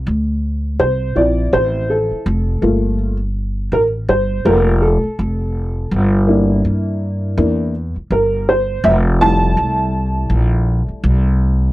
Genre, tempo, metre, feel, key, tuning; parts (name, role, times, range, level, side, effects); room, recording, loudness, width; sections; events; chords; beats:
hip hop, jazz-hop; 82 BPM; 4/4; swing 59% on 16ths; A4 = 435 Hz
upright bass; bass; 0.0-11.7 s; F1 to G2; -16 LUFS; equal
dark upright piano; accompaniment; 0.8-11.7 s; F3 to A5; -17 LUFS; equal
little or no reverb; dry, close 1970s-style studio recording; -14 LUFS; side -16 dB against mid
0.1-11.7 A section
upright piano solo 0.1-11.7
0.1 Dm9; 2.6 Gm9; 5.9 Gm6; 8.8 Fmaj9
| 0.06 0.79 1.52 2.26 | 2.99 3.72 4.45 5.18 | 5.92 6.65 7.38 8.11 | 8.84 9.57 10.31 11.04